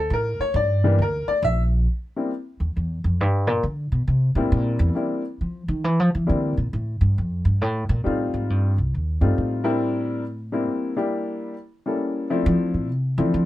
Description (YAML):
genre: jazz piano trio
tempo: 136 BPM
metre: 3/4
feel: swing 65% on 8ths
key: C mixolydian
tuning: A4 = 441 Hz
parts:
  - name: warm upright piano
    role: melody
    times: 0.0-2.3, 4.4-13.5 s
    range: E3 to E5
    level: -23 LUFS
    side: left 2 dB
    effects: none
  - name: upright bass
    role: bass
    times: 0.0-13.5 s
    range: Bb1 to F3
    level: -21 LUFS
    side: equal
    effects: none
room: little or no reverb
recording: close, detailed microphones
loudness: -20 LUFS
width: side -15 dB against mid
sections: 0.0-1.9 A section; 1.9-13.5 A section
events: upright piano solo 0.0-1.9; upright bass solo 1.9-13.5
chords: 0.0 C7sus2 (rootless); 1.9 N.C.; 3.2 Gmadd11; 4.5 C9; 7.2 F9; 9.8 C9; 11.1 Em7b5; 12.0 A7b9; 12.4 Dm7